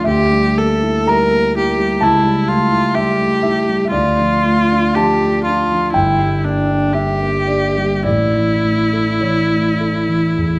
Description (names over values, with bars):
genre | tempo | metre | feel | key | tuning
classical, romantic duo for viola and grand piano | 51-65 BPM | 4/4 | rubato | unclear | A4 = 440 Hz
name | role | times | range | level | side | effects
rich viola | melody | 0.0-10.6 s | D4 to Bb4 | -19 LUFS | equal | none
dark concert grand piano | accompaniment | 0.0-10.6 s | G1 to Bb5 | -18 LUFS | equal | none
room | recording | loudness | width
wet recital hall reverb, RT60 1.7 s | none | -16 LUFS | mono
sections
0.0-10.6 A section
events
none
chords
0.0 Em7b5/D; 2.0 A7/C#; 3.9 Dm; 5.9 Gm; 8.0 A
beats
| 0.05 1.07 2.01 2.96 | 3.92 4.96 5.94 6.95 | 8.05 9.22 10.36